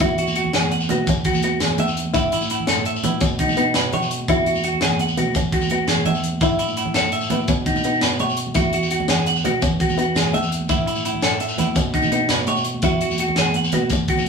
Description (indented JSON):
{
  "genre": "highlife guitar band",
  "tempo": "112 BPM (dotted quarters)",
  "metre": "12/8",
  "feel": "straight",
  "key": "E major",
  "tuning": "A4 = 440 Hz",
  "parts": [
    { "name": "fingerpicked swing-style acoustic guitar", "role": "accompaniment", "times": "0.0-14.0 s", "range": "G#3 to E4", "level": "-26 LUFS", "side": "left 2 dB", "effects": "none" },
    { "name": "clean electric guitar", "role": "arpeggios", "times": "0.0-14.2 s", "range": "D#4 to F#5", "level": "-23 LUFS", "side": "right 2 dB", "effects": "none" },
    { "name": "overdriven tine electric piano", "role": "bass", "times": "0.0-14.3 s", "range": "E2 to B2", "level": "-25 LUFS", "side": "right 1 dB", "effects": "none" },
    { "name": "tight funk drum kit", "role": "drums", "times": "0.0-14.3 s", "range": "hi-hat, kick drum, snare drum", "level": "-23 LUFS", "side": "equal", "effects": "none" },
    { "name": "agogo bells", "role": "percussion", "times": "0.0-14.3 s", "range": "none", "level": "-31 LUFS", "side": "left 4 dB", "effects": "none" },
    { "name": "congas", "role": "percussion", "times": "0.0-14.3 s", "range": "none", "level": "-28 LUFS", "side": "right 3 dB", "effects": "none" },
    { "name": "shekere", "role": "percussion", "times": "0.0-14.3 s", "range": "none", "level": "-29 LUFS", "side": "left 2 dB", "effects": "none" }
  ],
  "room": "moderate studio reverb, RT60 0.6 s",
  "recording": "band playing live in one room, studio ambience",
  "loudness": "-17 LUFS",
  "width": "side -5 dB against mid",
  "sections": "0.0-14.3 A section",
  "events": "none",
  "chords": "0.0 Eadd9; 2.1 A; 3.2 Badd9; 4.3 Eadd9; 6.4 A; 7.5 Badd9; 8.6 Eadd9; 10.7 A; 11.8 Badd9; 12.8 Esus2",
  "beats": "| 0.01 0.55 1.08 1.61 | 2.15 2.68 3.22 3.75 | 4.29 4.82 5.36 5.89 | 6.42 6.96 7.49 8.03 | 8.56 9.10 9.63 10.17 | 10.70 11.24 11.77 12.31 | 12.84 13.38 13.91"
}